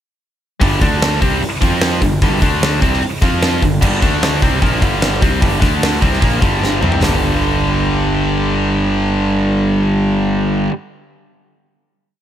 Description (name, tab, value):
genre	hard rock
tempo	150 BPM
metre	4/4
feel	straight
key	unclear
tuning	A4 = 440 Hz
part	tight distorted guitar	riff	0.6-10.7 s	G2 to F4	-16 LUFS	equal	distortion
part	fuzz picked electric bass	bass	0.6-10.7 s	G1 to F2	-19 LUFS	equal	overdrive
part	huge arena drum kit	drums	0.6-7.1 s	crash cymbal, hi-hat, kick drum, snare drum, toms	-16 LUFS	equal	none
room	small room ambience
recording	none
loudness	-13 LUFS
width	side -10 dB against mid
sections	0.6-7.0 riff; 7.0-10.2 final chord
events	drum fill 6.6-7.0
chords	0.6 G5; 0.8 D5; 1.2 Gsus4; 1.6 F5; 2.0 G5; 2.4 D5; 2.8 Gsus4; 3.2 F5; 3.6 G5; 4.0 D5; 4.4 G5; 5.6 D5; 6.0 G5